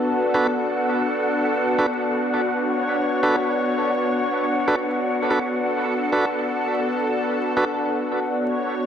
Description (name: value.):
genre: drum and bass.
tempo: 166 BPM.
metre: 4/4.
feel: straight.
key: B minor.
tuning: A4 = 440 Hz.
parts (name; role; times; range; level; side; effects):
lush unison pad; sustained chords; 0.0-8.9 s; B3 to C#5; -22 LUFS; left 1 dB; chorus.
wind-like tuned noise texture; texture; 0.1-8.9 s; F#5; -30 LUFS; left 1 dB; built-in reverb.
tonewheel organ; stabs; 0.3-7.6 s; D4 to B4; -25 LUFS; right 2 dB; overdrive, dub echo.
room: moderate plate reverb, RT60 2.9 s.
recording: vinyl crackle.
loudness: -20 LUFS.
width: side -8 dB against mid.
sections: 0.0-8.9 A section.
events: none.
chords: 0.0 Bm7.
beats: 0.06 0.42 0.79 | 1.15 1.51 1.87 2.23 | 2.59 2.96 3.32 3.68 | 4.04 4.40 4.76 5.12 | 5.49 5.85 6.21 6.57 | 6.93 7.29 7.65 8.02 | 8.38 8.74.